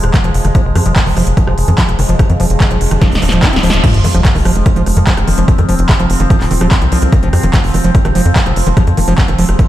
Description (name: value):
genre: psychedelic trance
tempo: 146 BPM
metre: 4/4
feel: straight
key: F minor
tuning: A4 = 441 Hz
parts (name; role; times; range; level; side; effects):
- overtone-sweeping drone; sustained chords; 0.0-9.7 s; F3 to C4; -20 LUFS; right 1 dB; chorus, built-in reverb, phaser, sidechain pumping
- tight sequencer bass; bass; 0.0-9.6 s; Eb1 to F2; -13 LUFS; equal; none
- big-room dance drum kit; drums; 0.0-9.7 s; crash cymbal, handclaps, hi-hat, rim click, snare drum; -19 LUFS; equal; none
- overdriven acid bass; riff; 0.1-9.6 s; Eb3 to F4; -18 LUFS; moving between left 4 dB and right 3 dB; auto-pan, sidechain pumping, digital delay
- electronic kick drum; drums; 0.1-9.7 s; none; -11 LUFS; equal; none
- riser and sub drop; sound effects; 2.4-5.5 s; none; -20 LUFS; equal; none
room: light reverb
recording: played on a big sound system in a bare room, large studio reverb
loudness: -9 LUFS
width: side -13 dB against mid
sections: 0.0-3.8 A section; 3.8-9.7 B section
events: riser 2.4-3.8; drum fill 3.0-3.8; band accent 3.7; drop 3.8-9.7; impact 3.8-5.5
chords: 0.0 F5